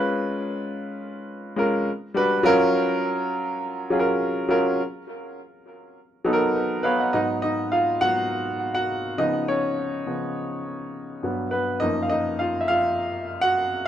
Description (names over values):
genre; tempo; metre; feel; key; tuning
soul; 102 BPM; 4/4; straight; G# dorian; A4 = 439 Hz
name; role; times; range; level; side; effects
warm grand piano; solo; 0.0-13.9 s; F#2 to F#5; -22 LUFS; equal; tape echo
room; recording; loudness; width
moderate studio reverb, RT60 0.6 s; rough home demo mix; -21 LUFS; side -10 dB against mid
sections
0.0-7.1 A section; 7.1-13.9 B section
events
grand piano solo 7.1-13.9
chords
0.0 C#7; 1.9 Gmaj7; 2.5 F#maj7; 4.8 Bmaj7; 7.1 G#m7; 9.2 C#7; 11.2 Gmaj7; 11.8 F#maj7